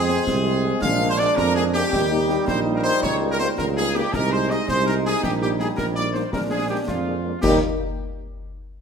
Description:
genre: military-style march for wind band.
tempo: 109 BPM (dotted quarters).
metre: 6/8.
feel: straight.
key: Eb major.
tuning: A4 = 442 Hz.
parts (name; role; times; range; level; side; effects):
clear trumpet section; melody; 0.0-7.6 s; F4 to F5; -23 LUFS; left 1 dB; none.
warm trombone section; sustained chords; 0.0-7.6 s; G3 to Eb4; -27 LUFS; right 2 dB; none.
mellow tuba; bass; 0.0-7.6 s; Bb1 to F2; -24 LUFS; right 3 dB; none.
mellow French horn section; accompaniment; 0.1-7.6 s; G3 to Eb4; -29 LUFS; left 4 dB; none.
concert snare drum, concert bass drum and clash cymbals; drums; 0.1-7.6 s; none; -31 LUFS; left 1 dB; none.
room: wet recital hall reverb, RT60 1.5 s.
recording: minimal, uncompressed stereo recording.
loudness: -19 LUFS.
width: side -6 dB against mid.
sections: 0.0-7.4 A section; 7.4-8.5 B section.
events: none.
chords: 0.0 Fm; 0.8 Bb7; 1.9 Eb; 3.0 Eb7/Db; 4.1 Ab/C; 5.2 Eb/Bb; 6.3 Bb7; 7.4 Eb.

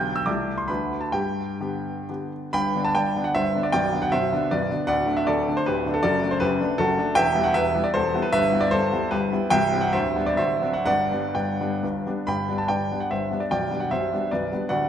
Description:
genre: classical, romantic triple-time dance for piano with dotted rhythms.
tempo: 119-168 BPM.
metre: 3/4.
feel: rubato.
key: G major.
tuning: A4 = 444 Hz.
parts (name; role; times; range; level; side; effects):
clear grand piano; solo; 0.0-14.9 s; B0 to G6; -21 LUFS; equal; none.
room: wet concert hall reverb, RT60 2.0 s.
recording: minimal, uncompressed stereo recording.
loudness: -21 LUFS.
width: side -9 dB against mid.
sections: 0.0-2.5 A section; 2.5-12.3 B section; 12.3-14.9 B section.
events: none.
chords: 0.3 Am7/C; 0.7 D; 1.1 G; 3.7 Cmaj9/B; 4.9 D5; 6.0 D/F#; 7.2 Em; 8.3 Em/G; 9.5 C; 9.9 G/D; 10.4 D7; 10.9 G; 13.5 G/B.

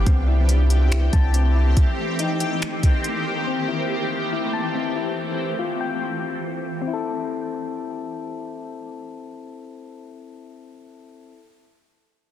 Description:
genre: hip hop, atmospheric cloud-rap.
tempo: 141 BPM.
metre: 4/4.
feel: half-time.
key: C major.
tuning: A4 = 440 Hz.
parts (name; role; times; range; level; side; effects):
shimmering ambient pad; sustained chords; 0.0-5.2 s; Eb3 to G4; -26 LUFS; equal; chorus, built-in reverb, phaser, sidechain pumping, low-pass filter.
clean 808-style bass; bass; 0.0-1.7 s; C2; -17 LUFS; equal; none.
wind-like tuned noise texture; texture; 0.0-1.8 s; C4 to E5; -42 LUFS; right 1 dB; none.
soft electric-piano-like synth keys; arpeggios; 0.1-11.5 s; C4 to A5; -29 LUFS; left 7 dB; chorus, low-pass filter, tape echo.
smooth R&B drum kit; drums; 0.1-3.1 s; finger snaps, hi-hat, kick drum; -20 LUFS; equal; soft clipping on snare.
room: light reverb.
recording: dense, heavily limited modern master.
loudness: -20 LUFS.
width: side -10 dB against mid.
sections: 0.1-6.9 A section; 6.9-10.3 B section.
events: none.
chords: 0.1 C6; 1.8 Eb6; 3.5 C6; 5.2 Fsus2; 6.9 C6.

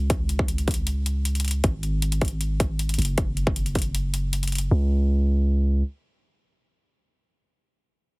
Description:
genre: future bass.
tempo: 156 BPM.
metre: 4/4.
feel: half-time.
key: unclear.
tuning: A4 = 439 Hz.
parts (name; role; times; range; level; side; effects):
long sustained 808-style bass; bass; 0.0-5.8 s; Gb1 to Db2; -23 LUFS; equal; sidechain pumping.
electronic hi-hat; drums; 0.1-4.7 s; none; -31 LUFS; left 2 dB; none.
electronic kick drum; drums; 0.1-3.8 s; none; -25 LUFS; equal; none.
room: little or no reverb.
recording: heavily compressed radio sound, multiband compression.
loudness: -22 LUFS.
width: side -29 dB against mid.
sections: 0.0-4.7 A section; 4.7-7.8 B section.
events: filter sweep on 808-style bass 0.0-4.7.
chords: none.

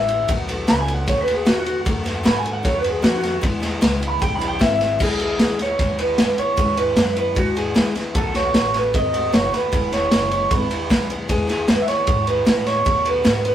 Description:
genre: rockabilly.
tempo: 153 BPM.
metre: 4/4.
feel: straight.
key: E major.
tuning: A4 = 441 Hz.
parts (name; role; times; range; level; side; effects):
electric guitar through a small old amp; melody; 0.0-13.5 s; F#4 to B5; -20 LUFS; right 1 dB; none.
picked steel-string acoustic guitar; accompaniment; 0.0-13.5 s; E2 to F#4; -27 LUFS; left 3 dB; none.
upright bass; bass; 0.0-13.5 s; E1 to B2; -28 LUFS; equal; none.
raw garage drum kit; drums; 0.1-13.5 s; crash cymbal, kick drum, ride cymbal, snare drum; -20 LUFS; equal; none.
room: moderate small room reverb, RT60 0.6 s.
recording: rough rehearsal-room recording.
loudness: -17 LUFS.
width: side -10 dB against mid.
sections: 0.0-5.0 A section; 5.0-13.5 B section.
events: clean electric guitar solo 0.0-5.0.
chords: 0.3 B7; 3.4 E; 8.2 B7; 9.7 E; 12.9 B7.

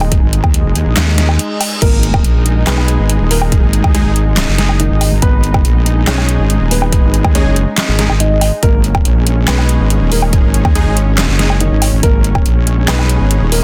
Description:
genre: heavy wobble dubstep.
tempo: 141 BPM.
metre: 4/4.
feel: half-time.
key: G# minor.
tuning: A4 = 438 Hz.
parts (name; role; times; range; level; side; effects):
lush unison pad; sustained chords; 0.0-13.6 s; G#3 to D#4; -25 LUFS; equal; chorus, sidechain pumping.
wobble bass; bass; 0.0-13.6 s; D#1 to D#2; -15 LUFS; equal; chorus, overdrive.
dubstep drum kit; drums; 0.0-13.6 s; crash cymbal, handclaps, hi-hat, snare drum, woodblock; -19 LUFS; equal; none.
electronic kick drum; drums; 0.1-12.4 s; none; -14 LUFS; equal; overdrive.
reverse cymbal; sound effects; 1.3-1.8 s; none; -27 LUFS; equal; none.
dark baby grand piano; melody; 1.8-13.6 s; D#3 to D#5; -24 LUFS; equal; tape echo.
supersaw stab; stabs; 2.7-13.6 s; G#3 to G#4; -25 LUFS; equal; tape echo.
room: little or no reverb.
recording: dense, heavily limited modern master.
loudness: -12 LUFS.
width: mono.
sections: 0.0-13.6 A section.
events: reverse cymbal 1.3-1.8; break 1.4-1.8.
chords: 0.0 G#madd9.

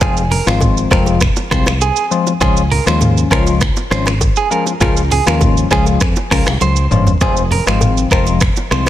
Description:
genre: afrobeats.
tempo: 100 BPM.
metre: 4/4.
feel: straight.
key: F minor.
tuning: A4 = 440 Hz.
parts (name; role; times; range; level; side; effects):
bell-like tine electric piano; accompaniment; 0.0-8.9 s; F3 to F4; -18 LUFS; left 6 dB; phaser.
clean electric guitar; riff; 0.0-8.8 s; Ab4 to C5; -20 LUFS; right 6 dB; spring reverb, tape echo.
fingered electric bass; bass; 0.0-8.9 s; F1 to F2; -16 LUFS; equal; none.
afro-pop drum kit; drums; 0.0-8.9 s; finger snaps, hi-hat, kick drum, rim click, shaker, toms; -16 LUFS; equal; soft clipping on snare.
congas and bongos; percussion; 0.0-8.9 s; none; -26 LUFS; right 2 dB; none.
room: light reverb.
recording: dense, heavily limited modern master.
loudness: -11 LUFS.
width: side -12 dB against mid.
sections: 0.0-8.9 A section.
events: drum fill 6.6-7.2.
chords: 0.0 Fm; 2.4 Db; 7.2 Fm.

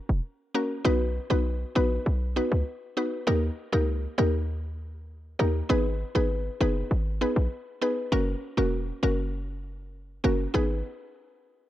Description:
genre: dancehall.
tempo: 99 BPM.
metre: 4/4.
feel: straight.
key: G# minor.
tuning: A4 = 441 Hz.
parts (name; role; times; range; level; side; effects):
short 808-style bass; bass; 0.1-10.8 s; E1 to D#2; -27 LUFS; equal; none.
mallet-like synth pluck; accompaniment; 0.5-10.8 s; A#3 to B4; -28 LUFS; equal; chorus.
room: light reverb, digital ambience.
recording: none.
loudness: -25 LUFS.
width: side -14 dB against mid.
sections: 0.8-10.5 A section; 10.5-11.7 B section.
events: none.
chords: 0.0 F#; 0.8 B; 3.3 D#; 5.7 G#m; 8.1 F#; 10.5 G#m.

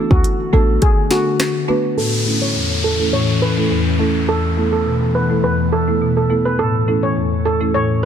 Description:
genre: dancehall.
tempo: 104 BPM.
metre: 4/4.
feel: straight.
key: A major.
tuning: A4 = 440 Hz.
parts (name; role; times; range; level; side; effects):
marimba with medium mallets; accompaniment; 0.0-8.1 s; E2 to B4; -18 LUFS; equal; low-pass filter.
glassy FM pad; sustained chords; 0.0-8.1 s; D3 to A4; -22 LUFS; left 3 dB; ensemble chorus, built-in reverb, sidechain pumping, low-pass filter.
steel pan; melody; 0.1-7.9 s; F#4 to C#5; -21 LUFS; right 2 dB; low-pass filter, tape echo.
short 808-style bass; bass; 0.1-0.8 s; A1 to D2; -14 LUFS; equal; none.
afro-pop drum kit; drums; 0.1-1.5 s; handclaps, hi-hat, kick drum, rim click, snare drum; -17 LUFS; equal; none.
downlifter; sound effects; 2.0-6.6 s; none; -24 LUFS; left 1 dB; none.
room: light reverb.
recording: dense, heavily limited modern master.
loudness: -14 LUFS.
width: side -8 dB against mid.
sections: 0.0-2.0 A section; 2.0-8.1 B section.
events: filter sweep 2.0-8.1.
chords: 0.0 D6; 2.0 A; 4.3 Esus4; 6.6 A.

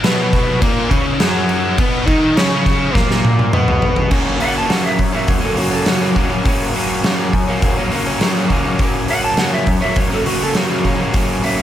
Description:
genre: garage rock duo or trio.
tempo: 103 BPM.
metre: 4/4.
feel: straight.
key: F# mixolydian.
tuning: A4 = 440 Hz.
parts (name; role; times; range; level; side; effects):
overdriven electric guitar; riff; 0.0-11.6 s; F#2 to D#4; -17 LUFS; equal; none.
oversized low-tuned drum kit; drums; 0.0-11.6 s; crash cymbal, hi-hat, kick drum, snare drum, toms; -17 LUFS; equal; none.
clean lap steel guitar; melody; 4.4-11.6 s; F#4 to A5; -21 LUFS; right 2 dB; none.
room: light reverb, studio reverb.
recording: none.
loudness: -14 LUFS.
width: side -11 dB against mid.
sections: 0.0-4.1 A section; 4.1-11.6 B section.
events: drum fill 3.0-4.1.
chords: 0.0 F#.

